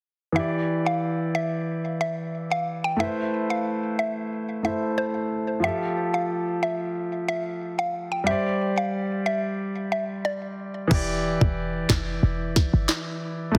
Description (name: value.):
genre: dancehall.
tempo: 91 BPM.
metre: 4/4.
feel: straight.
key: E phrygian.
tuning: A4 = 440 Hz.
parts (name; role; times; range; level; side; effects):
clear concert grand piano; accompaniment; 0.3-13.6 s; E3 to D5; -29 LUFS; equal; none.
mallet-like synth pluck; melody; 0.4-10.7 s; C5 to G5; -31 LUFS; equal; chorus, phaser, tape echo.
short 808-style bass; bass; 10.9-13.6 s; E1 to A1; -27 LUFS; equal; none.
island pop drum kit; drums; 10.9-13.6 s; crash cymbal, handclaps, kick drum, snare drum; -26 LUFS; equal; none.
room: light reverb, digital ambience.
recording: heavily compressed radio sound, multiband compression.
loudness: -26 LUFS.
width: mono.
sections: 0.4-10.9 A section; 10.9-13.6 B section.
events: none.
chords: 0.4 Em7; 3.0 Amadd9; 5.6 Fadd9; 8.3 Gsus4; 10.9 Em7.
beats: | 0.36 1.02 1.68 2.34 | 3.00 3.66 4.32 4.98 | 5.63 6.29 6.95 7.61 | 8.27 8.93 9.59 10.25 | 10.91 11.57 12.23 12.89 | 13.55.